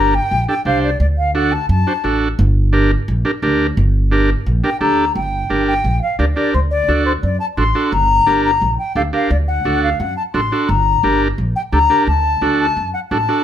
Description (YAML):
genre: latin, cumbia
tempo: 173 BPM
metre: 4/4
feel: straight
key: G harmonic minor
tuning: A4 = 440 Hz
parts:
  - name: concert flute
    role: melody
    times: 0.0-2.2, 4.6-13.4 s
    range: C5 to C6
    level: -17 LUFS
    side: left 3 dB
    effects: plate reverb
  - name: combo organ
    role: accompaniment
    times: 0.0-13.4 s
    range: D4 to C5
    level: -18 LUFS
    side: right 2 dB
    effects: none
  - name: upright bass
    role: bass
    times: 0.0-13.3 s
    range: G1 to F#2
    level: -18 LUFS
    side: equal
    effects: none
room: light reverb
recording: none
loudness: -14 LUFS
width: side -10 dB against mid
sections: 0.0-5.2 A section; 5.2-13.4 B section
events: none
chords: 0.0 Gm; 1.0 D; 2.4 Gm; 6.5 D7; 7.9 Gm; 9.3 D7; 10.7 Gm; 12.1 D